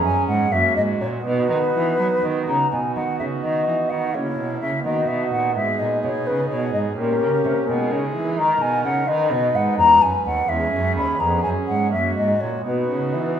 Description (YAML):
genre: classical, baroque-style sonata movement with continuo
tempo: 84 BPM (dotted quarters)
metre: 6/8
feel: straight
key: B major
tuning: A4 = 441 Hz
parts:
  - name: mellow hollow silver concert flute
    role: melody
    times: 0.0-13.4 s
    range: Bb4 to B5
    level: -20 LUFS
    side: left 2 dB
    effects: none
  - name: pipe organ, foundations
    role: accompaniment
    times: 0.0-13.4 s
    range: D#2 to B4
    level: -25 LUFS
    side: right 3 dB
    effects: none
  - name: warm cello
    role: bass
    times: 0.0-13.4 s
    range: D#2 to F#3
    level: -25 LUFS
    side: right 2 dB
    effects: none
room: wet recital hall reverb, RT60 1.5 s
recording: minimal, uncompressed stereo recording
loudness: -18 LUFS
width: side -9 dB against mid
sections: 0.0-2.7 A section; 2.7-13.4 A section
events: none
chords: 0.0 C#5; 0.5 F#; 1.3 B; 4.1 A#dim; 4.9 B; 5.6 G#m; 7.0 Gdim/Bb; 7.7 G#m/B; 8.4 D#5; 9.1 B; 9.8 E; 10.5 C#m/E; 11.2 C#7/E#; 11.9 F#; 12.7 B